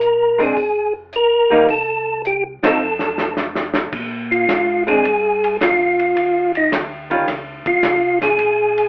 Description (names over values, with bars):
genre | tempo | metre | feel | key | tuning
soul jazz organ trio | 107 BPM | 4/4 | swing 69% on 8ths | Bb mixolydian | A4 = 443 Hz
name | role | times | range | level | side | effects
percussive tonewheel organ | melody | 0.0-8.9 s | Eb4 to Bb4 | -15 LUFS | equal | overdrive, chorus vibrato, fast rotary speaker
mellow tonewheel organ | bass | 0.0-8.9 s | F1 to Bb2 | -35 LUFS | equal | slow rotary speaker
warm soul drum kit | drums | 0.0-8.9 s | crash cymbal, hi-hat, kick drum, ride cymbal, snare drum | -23 LUFS | equal | none
archtop guitar, miked and amplified | accompaniment | 0.4-7.3 s | Eb3 to A4 | -17 LUFS | right 1 dB | none
room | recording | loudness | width
moderate studio reverb, RT60 0.5 s | band playing live in one room, telephone sound | -14 LUFS | side -25 dB against mid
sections
0.0-3.9 A section; 3.9-8.9 B section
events
band accent 2.5; drum fill 2.8-3.9; tonewheel organ solo 3.9-8.9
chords
0.0 Bb7(no3); 1.7 Cm; 2.8 F; 3.9 Bb7(no3); 6.2 Eb7sus2